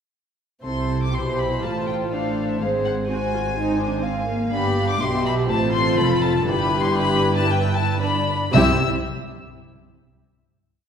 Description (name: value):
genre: quick classical-period movement for string orchestra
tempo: 122 BPM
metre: 4/4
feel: rubato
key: C major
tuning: A4 = 439 Hz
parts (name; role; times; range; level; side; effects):
- warm chamber violin section; melody; 0.6-8.8 s; E5 to E6; -25 LUFS; left 5 dB; none
- dark chamber violin section; second line; 0.6-8.8 s; G4 to F5; -26 LUFS; left 1 dB; none
- warm chamber viola section; accompaniment; 0.6-8.8 s; Bb3 to Ab4; -25 LUFS; right 1 dB; none
- dark chamber cello section; bass; 0.6-8.8 s; F2 to C3; -26 LUFS; right 2 dB; none
- warm studio double bass section; bass; 0.6-8.8 s; F1 to C2; -26 LUFS; right 2 dB; none
room: wet scoring stage reverb, RT60 1.7 s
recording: heard from further back in the room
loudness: -19 LUFS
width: side -7 dB against mid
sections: 0.6-8.5 A section; 8.5-10.5 final chord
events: none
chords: 0.6 C; 1.6 F/A; 2.6 Ab7; 4.5 G; 5.5 F/A; 6.5 G; 8.5 C